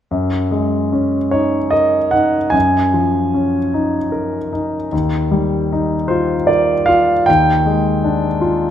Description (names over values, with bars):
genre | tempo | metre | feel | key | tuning
classical, impressionist solo piano | 51 BPM (dotted quarters) | 6/8 | rubato | F# major | A4 = 439 Hz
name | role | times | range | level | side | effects
warm concert grand piano | solo | 0.1-8.7 s | D#2 to G#5 | -14 LUFS | equal | none
room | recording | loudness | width
moderate recital hall reverb, RT60 1.4 s | none | -14 LUFS | side -10 dB against mid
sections
0.1-8.7 A section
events
none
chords
0.1 F#69; 2.5 C#69/F#; 4.9 D#add9; 7.3 A#6/D# (rootless)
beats
| 0.12 1.34 | 2.54 3.75 | 4.92 6.10 | 7.28 8.41